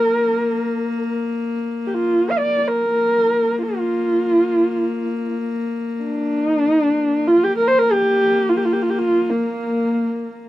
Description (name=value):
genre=mongolian traditional, Mongolian folk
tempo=free time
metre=none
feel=none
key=Bb gong mode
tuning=A4 = 439 Hz
part: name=dark horsehead fiddle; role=melody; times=0.0-10.5 s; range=Bb3 to F5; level=-17 LUFS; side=equal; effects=none
part: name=clear horsehead fiddle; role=drone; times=0.0-10.5 s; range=Bb3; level=-24 LUFS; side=left 3 dB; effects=none
room=light reverb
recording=dry, close 1970s-style studio recording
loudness=-17 LUFS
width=side -15 dB against mid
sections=0.0-10.5 A section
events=none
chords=none